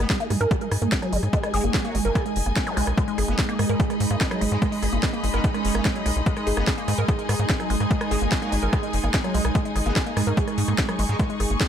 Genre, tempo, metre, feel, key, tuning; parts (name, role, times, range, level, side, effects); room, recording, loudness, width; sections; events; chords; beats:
psychedelic trance; 146 BPM; 4/4; straight; G# minor; A4 = 440 Hz
metallic wobble bass; second line; 0.0-11.2 s; F#3 to C#4; -39 LUFS; right 1 dB
evolving wavetable pad; sustained chords; 0.4-11.7 s; G#3; -30 LUFS; right 3 dB; chorus, built-in reverb, phaser, sidechain pumping
woody wave-folded pluck; riff; 0.0-11.7 s; F#3 to A#4; -28 LUFS; moving between left 2 dB and right 7 dB; chorus, auto-pan, sidechain pumping, tape echo
tight sequencer bass; bass; 0.0-11.6 s; F#1 to G#2; -24 LUFS; equal
techno drum kit; drums; 0.0-11.7 s; hi-hat, rim click, snare drum; -29 LUFS; equal
rich studio string section; texture; 0.0-11.7 s; D#4 to C#6; -31 LUFS; left 2 dB; sidechain pumping
electronic kick drum; drums; 0.1-11.7 s; -24 LUFS; equal; overdrive
zap; sound effects; 2.7-2.8 s; -34 LUFS; equal
little or no reverb; -21 LUFS; side -9 dB against mid
0.0-11.7 A section
0.0 G#5
0.10 0.51 0.92 | 1.33 1.74 2.15 2.56 | 2.98 3.39 3.80 4.21 | 4.62 5.03 5.44 5.85 | 6.26 6.67 7.08 7.50 | 7.91 8.32 8.73 9.14 | 9.55 9.96 10.37 10.78 | 11.20 11.61